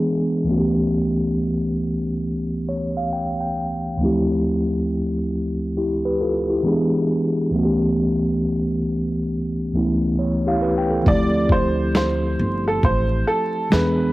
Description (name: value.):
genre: lo-fi hip hop.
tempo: 68 BPM.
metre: 4/4.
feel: swing 64% on 16ths.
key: D dorian.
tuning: A4 = 439 Hz.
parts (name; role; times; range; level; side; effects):
mellow tine electric piano; accompaniment; 0.0-14.1 s; C#2 to G5; -19 LUFS; equal; medium stereo tremolo, cassette tape.
clear upright piano; melody; 11.1-14.1 s; A4 to D5; -22 LUFS; right 1 dB; cassette tape.
upright bass; bass; 11.1-14.1 s; G1 to E2; -23 LUFS; equal; none.
boom bap sampler-style drum kit; drums; 11.1-14.0 s; kick drum, snare drum; -20 LUFS; equal; cassette tape.
room: light reverb, small room ambience.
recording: home recording on cassette, vinyl crackle, low-pass filter.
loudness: -18 LUFS.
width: side -18 dB against mid.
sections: 0.0-11.1 A section; 11.1-14.1 B section.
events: filter sweep 0.0-11.1; tine electric piano fill 2.2-4.0, 9.7-11.1; hi-hats muted 11.1-14.1.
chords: 0.5 A7/C#; 4.0 Dm11; 6.6 E7; 7.5 A7/C#; 11.1 Dm11.